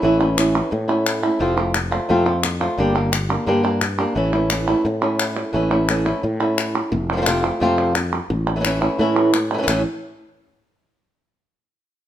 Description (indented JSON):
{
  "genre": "flamenco",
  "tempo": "174 BPM",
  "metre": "4/4",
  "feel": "straight",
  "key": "A phrygian dominant",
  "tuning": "A4 = 440 Hz",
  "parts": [
    { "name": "flamenco guitar", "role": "melody", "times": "0.0-9.8 s", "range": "A2 to G4", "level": "-19 LUFS", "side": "equal", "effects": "none" },
    { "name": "sustaining fretless electric bass", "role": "bass", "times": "0.0-9.8 s", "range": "F1 to A2", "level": "-23 LUFS", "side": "left 1 dB", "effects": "none" },
    { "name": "palmas hand claps", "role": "percussion", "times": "0.2-9.8 s", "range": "none", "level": "-24 LUFS", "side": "equal", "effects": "none" }
  ],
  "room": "moderate large studio reverb, RT60 1.1 s",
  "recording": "minimal, uncompressed stereo recording",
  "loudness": "-17 LUFS",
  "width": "side -11 dB against mid",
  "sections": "0.0-9.7 A section; 9.7-11.1 B section",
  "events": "none",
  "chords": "0.0 A; 1.4 F; 2.8 Gm; 4.2 A; 6.9 F; 8.3 A; 9.7 N.C.",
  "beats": "| 0.03 0.38 0.72 1.06 | 1.41 1.75 2.09 2.44 | 2.78 3.13 3.47 3.82 | 4.16 4.51 4.85 5.20 | 5.54 5.89 6.23 6.58 | 6.92 7.27 7.61 7.96 | 8.30 8.64 8.99 9.33 | 9.68"
}